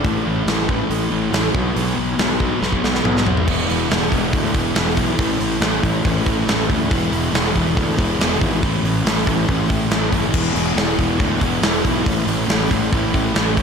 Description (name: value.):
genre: quiet-loud alternative rock.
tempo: 140 BPM.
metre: 4/4.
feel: straight.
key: E major.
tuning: A4 = 439 Hz.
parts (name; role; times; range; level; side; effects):
thick fuzz guitar; riff; 0.0-13.6 s; A2 to E4; -20 LUFS; equal; distortion, slapback echo.
fuzz fingered electric bass; bass; 0.0-13.6 s; E1 to A2; -24 LUFS; equal; overdrive.
big rock drum kit; drums; 0.0-13.6 s; crash cymbal, hi-hat, kick drum, snare drum, toms; -20 LUFS; equal; none.
room: moderate concert hall reverb, RT60 2.5 s.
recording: big arena sound.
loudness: -16 LUFS.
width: side -6 dB against mid.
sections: 0.0-3.5 A section; 3.5-13.6 B section.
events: drum fill 2.6-3.5.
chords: 0.0 A5; 1.5 B5; 3.5 E; 5.2 A; 6.9 E; 8.6 A; 10.3 E; 12.1 A.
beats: | 0.04 0.47 0.90 1.33 | 1.76 2.19 2.62 3.05 | 3.48 3.91 4.34 4.77 | 5.20 5.62 6.05 6.48 | 6.91 7.34 7.77 8.20 | 8.62 9.05 9.48 9.91 | 10.34 10.77 11.20 11.63 | 12.06 12.49 12.92 13.35.